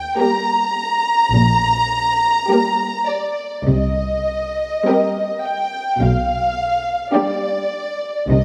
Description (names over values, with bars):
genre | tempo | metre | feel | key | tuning
classical, slow romantic movement for string orchestra | 52 BPM | 4/4 | rubato | unclear | A4 = 440 Hz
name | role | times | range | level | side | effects
dark symphonic violin section | melody | 0.0-8.4 s | D5 to Bb5 | -21 LUFS | equal | none
warm symphonic violin section | second line | 0.2-8.0 s | G4 to D5 | -25 LUFS | equal | none
dark symphonic viola section | accompaniment | 0.2-8.0 s | G3 to D4 | -24 LUFS | equal | none
warm symphonic cello section | bass | 1.3-8.4 s | Bb2 to C3 | -23 LUFS | equal | none
warm symphonic double bass section | bass | 1.3-8.4 s | Bb1 to C2 | -23 LUFS | equal | none
room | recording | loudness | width
wet scoring stage reverb, RT60 1.8 s | none | -19 LUFS | mono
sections
0.0-8.4 A section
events
none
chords
0.0 Eb (rootless); 3.7 Cm7; 6.0 G7/B